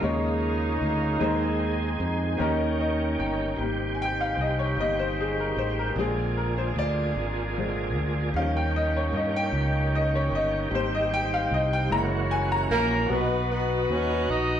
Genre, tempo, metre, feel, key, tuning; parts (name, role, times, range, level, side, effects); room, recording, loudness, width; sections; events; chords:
gospel; 50 BPM (dotted quarters); 6/8; straight; Ab major; A4 = 440 Hz
clear horn section; melody; 0.0-2.8, 12.7-14.6 s; Ab3 to D#5; -29 LUFS; left 1 dB
bright baby grand piano; accompaniment; 0.0-14.6 s; B2 to Bb5; -28 LUFS; left 2 dB
tonewheel organ; sustained chords; 0.0-14.6 s; Eb3 to Ab4; -31 LUFS; right 2 dB; slow rotary speaker, chorus vibrato
fingered electric bass; bass; 0.0-14.6 s; Gb1 to G2; -28 LUFS; equal
clear woodwind section; sustained chords; 3.6-13.1 s; G3 to Ab4; -36 LUFS; equal
breathy tenor saxophone; melody; 12.7-14.6 s; Bb3 to D#4; -28 LUFS; right 1 dB
wet studio reverb, RT60 0.9 s; band playing live in one room; -23 LUFS; side -9 dB against mid
0.0-3.6 A section; 3.6-13.1 B section; 13.1-14.6 C section
grand piano fill 2.4-3.6; grand piano solo 3.6-13.1
0.0 Eb9sus4; 1.2 Ab/Eb; 2.4 Eb7; 3.6 Abmaj7; 6.0 Bb7; 8.3 Eb7; 10.7 Abmaj7; 11.9 Gb7; 13.1 Bmaj7